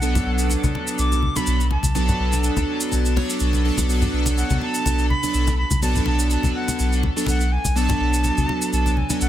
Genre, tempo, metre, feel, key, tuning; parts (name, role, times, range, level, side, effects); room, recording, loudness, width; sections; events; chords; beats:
deep house; 124 BPM; 4/4; swing 54% on 16ths; B minor; A4 = 441 Hz
silver concert flute; melody; 0.0-9.3 s; F#5 to D6; -28 LUFS; equal; tape echo
chorused polysynth; stabs; 0.0-9.3 s; F#3 to C#5; -23 LUFS; right 1 dB; digital delay
warm sub bass; bass; 0.0-9.3 s; B1; -21 LUFS; equal
cabasa; percussion; 0.0-9.3 s; -29 LUFS; equal
congas; percussion; 0.2-9.2 s; -26 LUFS; left 2 dB
studio reverb; dense, heavily limited modern master; -18 LUFS; side -12 dB against mid
0.0-9.3 A section
0.0 Bm7
| 0.02 0.50 0.99 1.47 | 1.95 2.44 2.92 3.40 | 3.89 4.37 4.86 5.34 | 5.83 6.31 6.79 7.28 | 7.76 8.24 8.73 9.21